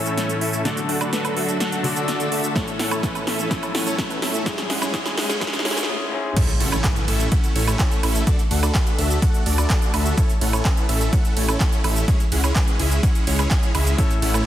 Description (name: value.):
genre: EDM, festival progressive house.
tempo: 126 BPM.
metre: 4/4.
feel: straight.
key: A major.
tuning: A4 = 440 Hz.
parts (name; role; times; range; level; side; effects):
warm concert grand piano; accompaniment; 0.0-6.4, 14.0-14.5 s; G#2 to A4; -28 LUFS; left 3 dB; sidechain pumping, digital delay.
clear studio string section; sustained chords; 0.0-5.9 s; E3 to A4; -31 LUFS; equal; sidechain pumping.
supersaw chords; riff; 0.0-14.4 s; G#3 to F#5; -25 LUFS; equal; sidechain pumping, low-pass filter, digital delay.
riser and impact; sound effects; 1.1-8.3 s; none; -33 LUFS; equal; none.
big-room dance drum kit; drums; 0.1-14.4 s; cabasa, crash cymbal, handclaps, hi-hat, ride cymbal, snare drum, woodblock; -26 LUFS; right 2 dB; overdrive.
electronic kick drum; drums; 2.6-14.1 s; none; -20 LUFS; equal; overdrive.
wide detuned saw bass; bass; 6.6-14.4 s; A1 to D2; -21 LUFS; equal; chorus, sidechain pumping.
room: light reverb.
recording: dense, heavily limited modern master, high-pass filter.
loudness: -18 LUFS.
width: side -12 dB against mid.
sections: 0.0-6.4 A section; 6.4-14.5 B section.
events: build-up 0.0-6.4; drum fill 0.0-5.9; filter sweep on supersaw synth 0.0-6.4; drop 6.4-14.5; impact 6.4-8.3.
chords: 0.0 A; 0.7 D; 2.6 A; 4.5 C#m; 6.4 A; 8.3 D; 10.2 A; 12.1 C#m.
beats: 0.17 | 0.65 1.13 1.60 2.08 | 2.56 3.03 3.51 3.98 | 4.46 4.94 5.41 5.89 | 6.37 6.84 7.32 7.79 | 8.27 8.75 9.22 9.70 | 10.18 10.65 11.13 11.60 | 12.08 12.56 13.03 13.51 | 13.98.